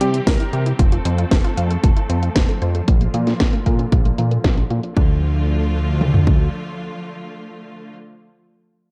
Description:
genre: italo disco.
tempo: 115 BPM.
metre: 4/4.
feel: straight.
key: D minor.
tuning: A4 = 442 Hz.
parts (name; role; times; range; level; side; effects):
clear electric grand piano; melody; 0.0-0.6 s; G4 to Bb4; -28 LUFS; equal; delay.
bright studio string section; sustained chords; 0.0-7.9 s; D3 to A4; -31 LUFS; equal; low-pass filter.
analog pluck; arpeggios; 0.0-5.2 s; F3 to F5; -31 LUFS; equal; chorus, cassette tape, delay.
fat analog bass; bass; 0.0-6.5 s; F1 to C3; -22 LUFS; equal; none.
house drum kit; drums; 0.0-4.9 s; hi-hat, snare drum; -26 LUFS; equal; low-pass filter on hats, low-pass filter on perc, low-pass filter on snare, low-pass filter on cymbals, low-pass filter on room.
house drum kit; drums; 0.3-6.4 s; kick drum, toms; -19 LUFS; equal; none.
room: little or no reverb.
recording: dark, warm production.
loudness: -18 LUFS.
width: mono.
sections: 0.0-5.0 A section; 5.0-8.9 B section.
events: filter sweep on synth arpeggio sound 0.0-5.0; filter sweep on string section 0.0-5.0.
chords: 0.0 C; 0.8 F; 2.9 Bb; 5.0 Dm.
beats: 0.27 | 0.79 1.31 1.83 2.36 | 2.88 3.40 3.92 4.44 | 4.96 5.49 6.01 6.53 | 7.05 7.57.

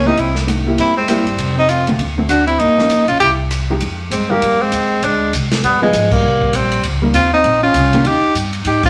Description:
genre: jazz, small-group swing and bop.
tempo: 198 BPM.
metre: 4/4.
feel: swing 60% on 8ths.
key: F minor.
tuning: A4 = 440 Hz.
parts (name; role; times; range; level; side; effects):
edgy tenor saxophone; melody; 0.0-8.9 s; Ab3 to G4; -17 LUFS; equal; none.
mellow trombone; second line; 0.0-8.9 s; F3 to E4; -22 LUFS; equal; none.
upright bass; bass; 0.0-8.9 s; F1 to Ab2; -23 LUFS; equal; none.
hollow-body jazz guitar; accompaniment; 0.1-8.0 s; D3 to Ab4; -21 LUFS; equal; none.
swinging big-band drum kit; drums; 0.2-8.9 s; crash cymbal, hi-hat, kick drum, ride cymbal, rim click, snare drum; -25 LUFS; equal; none.
room: wet studio reverb, RT60 0.9 s.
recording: none.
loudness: -15 LUFS.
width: mono.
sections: 0.0-3.8 A section; 3.8-8.9 B section.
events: band accent 6.1.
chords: 0.2 C7; 1.4 F5; 2.0 D7; 2.6 Gm7b5; 3.2 C5; 3.8 Fm9; 5.0 Csus2; 5.6 G7b9; 6.2 Cm7; 8.0 Eb.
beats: | 0.17 0.47 0.78 1.08 | 1.38 1.69 1.99 2.29 | 2.59 2.90 3.20 3.50 | 3.81 4.11 4.41 4.71 | 5.02 5.32 5.62 5.93 | 6.23 6.53 6.83 7.14 | 7.44 7.74 8.04 8.35 | 8.65.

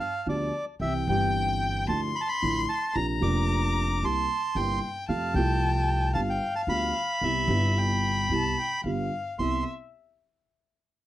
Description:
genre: tango.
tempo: 112 BPM.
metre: 4/4.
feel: rubato.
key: C major.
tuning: A4 = 439 Hz.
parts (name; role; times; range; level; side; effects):
bandoneon; melody; 0.0-9.6 s; D5 to D6; -29 LUFS; right 1 dB; slapback echo.
warm violin; second line; 0.0-9.7 s; E5 to C6; -33 LUFS; left 4 dB; none.
dark upright piano; accompaniment; 0.3-9.6 s; F1 to G4; -30 LUFS; right 2 dB; none.
upright bass; bass; 0.3-9.6 s; F1 to F2; -30 LUFS; equal; none.
room: little or no reverb.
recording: dry, close 1970s-style studio recording.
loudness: -24 LUFS.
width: side -14 dB against mid.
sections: 0.0-9.4 A section; 9.4-11.1 B section.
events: none.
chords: 0.0 G7; 0.8 C; 1.9 Dmadd9; 3.0 Bbadd9; 4.0 C7; 5.1 F; 6.2 G7; 7.2 Cmaj7; 8.8 G7; 9.4 Cmaj7.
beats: 0.25 | 0.80 1.34 1.88 2.42 | 2.95 3.49 4.02 4.56 | 5.09 5.62 6.15 6.69 | 7.22 7.76 8.30 8.85 | 9.39.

